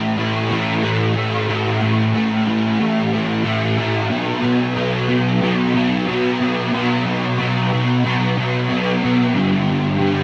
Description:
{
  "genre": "rock",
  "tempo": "91 BPM",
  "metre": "4/4",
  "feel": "straight",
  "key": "unclear",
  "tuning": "A4 = 440 Hz",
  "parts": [
    { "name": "fuzz guitar", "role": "solo", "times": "0.0-10.2 s", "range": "G2 to B3", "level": "-18 LUFS", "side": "equal", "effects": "distortion, ensemble chorus, tape echo" }
  ],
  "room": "wet plate reverb, RT60 3.5 s",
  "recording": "dreamy mix soaked in reverb",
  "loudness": "-18 LUFS",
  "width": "mono",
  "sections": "0.0-10.2 A section",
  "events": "none",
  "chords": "0.0 A5; 4.1 B5; 9.4 G5"
}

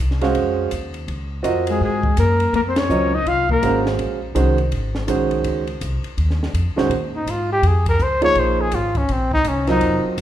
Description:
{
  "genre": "modal jazz",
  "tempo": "165 BPM",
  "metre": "4/4",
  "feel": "swing 63% on 8ths",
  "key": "Bb minor",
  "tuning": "A4 = 440 Hz",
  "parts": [
    { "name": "upright bass", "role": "bass", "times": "0.0-10.2 s", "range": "F1 to Bb2", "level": "-22 LUFS", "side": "equal", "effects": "none" },
    { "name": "compact cocktail drum kit", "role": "drums", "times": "0.1-10.2 s", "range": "hi-hat, kick drum, ride cymbal, snare drum", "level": "-28 LUFS", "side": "equal", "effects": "none" },
    { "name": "warm upright piano", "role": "accompaniment", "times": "0.2-10.2 s", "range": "Eb3 to F5", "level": "-21 LUFS", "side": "right 4 dB", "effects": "none" },
    { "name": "breathy trumpet", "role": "melody", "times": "1.7-3.8, 7.2-10.0 s", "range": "C4 to F5", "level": "-20 LUFS", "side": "left 1 dB", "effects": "none" },
    { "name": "mellow alto saxophone", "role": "second line", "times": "1.7-3.8 s", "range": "Ab3-20c to F4", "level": "-23 LUFS", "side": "left 7 dB", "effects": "none" }
  ],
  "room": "moderate recital hall reverb, RT60 1.5 s",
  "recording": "recorded in a church or concert hall",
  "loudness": "-17 LUFS",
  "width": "side -11 dB against mid",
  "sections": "0.0-6.9 A section; 6.9-10.2 B section",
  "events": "band accent 2.7; trumpet solo 6.9-10.2",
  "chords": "0.0 Bbm11"
}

